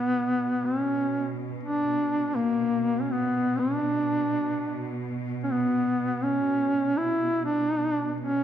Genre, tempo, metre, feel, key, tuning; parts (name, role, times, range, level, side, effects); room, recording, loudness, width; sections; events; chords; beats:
caucasian folk, Caucasian lament; 62 BPM; 4/4; rubato; B harmonic minor; A4 = 440 Hz
mellow duduk; melody; 0.0-8.4 s; A#3 to E4; -24 LUFS; equal
warm symphonic cello section; drone; 0.0-8.4 s; B2; -34 LUFS; right 3 dB
moderate scoring stage reverb, RT60 1.7 s; dark, warm production; -24 LUFS; side -10 dB against mid
0.0-8.4 A section
0.65 | 1.62 2.59 3.56 4.53 | 5.50 6.48 7.46